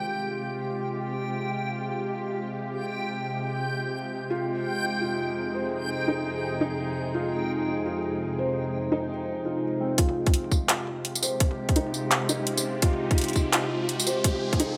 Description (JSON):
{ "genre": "half-time drum and bass", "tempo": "169 BPM", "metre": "4/4", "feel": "swing 60% on 16ths, half-time", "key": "F minor", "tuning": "A4 = 440 Hz", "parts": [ { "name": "bowed-like drone", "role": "sustained chords", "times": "0.0-14.8 s", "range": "F2 to Ab4", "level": "-33 LUFS", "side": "equal", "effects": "built-in reverb, sidechain pumping" }, { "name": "backwards swelling texture", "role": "texture", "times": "0.0-10.0 s", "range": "G5", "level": "-37 LUFS", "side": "equal", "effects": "built-in reverb" }, { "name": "felt-muted upright piano", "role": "arpeggios", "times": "4.3-14.8 s", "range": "C4 to C5", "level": "-32 LUFS", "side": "equal", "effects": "vintage 12-bit sampler grit, low-pass filter, digital delay" }, { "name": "long sustained 808-style bass", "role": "bass", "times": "10.0-14.8 s", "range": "none", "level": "barely audible", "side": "none", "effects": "none" }, { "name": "drum and bass drum kit", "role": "drums", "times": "10.0-14.8 s", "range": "handclaps, hi-hat, tambourine, toms", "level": "-29 LUFS", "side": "equal", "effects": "overdrive, high-pass filter on hats, low-pass filter on hats, small room ambience, high-pass filter on toms, low-pass filter on toms, high-pass filter on perc, low-pass filter on perc, high-pass filter on snare, low-pass filter on snare" }, { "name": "electronic kick drum", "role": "drums", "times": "10.0-14.6 s", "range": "none", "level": "-26 LUFS", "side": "equal", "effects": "overdrive, small room ambience" }, { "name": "riser", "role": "sound effects", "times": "12.4-14.8 s", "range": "none", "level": "-39 LUFS", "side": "equal", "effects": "none" } ], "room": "moderate echo chamber reverb, RT60 1.9 s, digital ambience", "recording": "high-pass filter", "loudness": "-28 LUFS", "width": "mono", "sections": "0.0-10.0 A section; 10.0-14.8 B section", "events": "build-up 10.0-14.8; filter sweep on felt piano 10.0-14.8; riser 12.4-14.8", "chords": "0.0 Fmadd9; 4.3 Ab/F; 10.0 Fmadd9" }